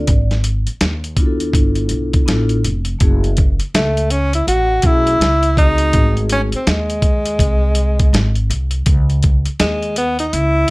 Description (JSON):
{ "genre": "hip hop, jazz-hop", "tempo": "82 BPM", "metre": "4/4", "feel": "swing 63% on 16ths", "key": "unclear", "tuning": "A4 = 440 Hz", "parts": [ { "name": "vibraphone with medium mallets", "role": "accompaniment", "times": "0.0-6.5 s", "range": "A3 to D5", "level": "-22 LUFS", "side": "left 2 dB", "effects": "none" }, { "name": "upright bass", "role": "bass", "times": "0.0-10.7 s", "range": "F1 to D#2", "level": "-18 LUFS", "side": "equal", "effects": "none" }, { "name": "dusty soul sampler-style drum kit", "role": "drums", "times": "0.1-10.7 s", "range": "hi-hat, kick drum, snare drum", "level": "-16 LUFS", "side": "equal", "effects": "none" }, { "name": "mellow tenor saxophone", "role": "melody", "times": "3.7-10.7 s", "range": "G#3 to F#4", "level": "-17 LUFS", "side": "equal", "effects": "slapback echo" } ], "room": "light reverb", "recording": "none", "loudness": "-13 LUFS", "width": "side -23 dB against mid", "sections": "0.0-10.7 A section", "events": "none", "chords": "0.1 G#m; 1.5 G13; 3.0 F#m7; 5.9 G#7b9; 8.9 C#madd9", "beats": "| 0.08 0.81 1.55 2.28 | 3.01 3.74 4.47 5.20 | 5.94 6.67 7.40 8.13 | 8.86 9.59 10.33" }